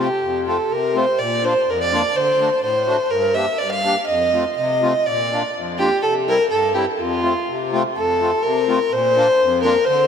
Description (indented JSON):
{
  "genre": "alpine folk, alpine dance band",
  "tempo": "124 BPM",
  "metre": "2/4",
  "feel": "rubato",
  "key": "F major",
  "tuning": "A4 = 438 Hz",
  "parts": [
    { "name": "dark fiddle", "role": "melody", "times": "0.0-10.1 s", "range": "F4 to F5", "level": "-17 LUFS", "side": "equal", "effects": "diffuse ambient delay" },
    { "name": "accordion", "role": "accompaniment", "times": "0.0-10.1 s", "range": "F2 to G4", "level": "-23 LUFS", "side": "left 3 dB", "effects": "light tremolo tuning" }
  ],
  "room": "wet lush hall reverb, RT60 3.2 s",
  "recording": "dreamy mix soaked in reverb",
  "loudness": "-16 LUFS",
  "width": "side -7 dB against mid",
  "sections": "0.2-8.0 A section; 8.0-10.1 A section",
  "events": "none",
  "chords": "0.2 F; 1.2 Bb; 2.1 D7; 3.1 Gm; 4.1 F7; 5.1 Bb; 6.0 C; 7.0 F; 8.9 Bb",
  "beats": "| 0.21 0.70 | 1.18 1.66 | 2.14 2.62 | 3.10 3.59 | 4.08 4.58 | 5.06 5.55 | 6.03 6.50 | 6.98 7.47 | 7.96 8.44 | 8.92 9.40 | 9.88"
}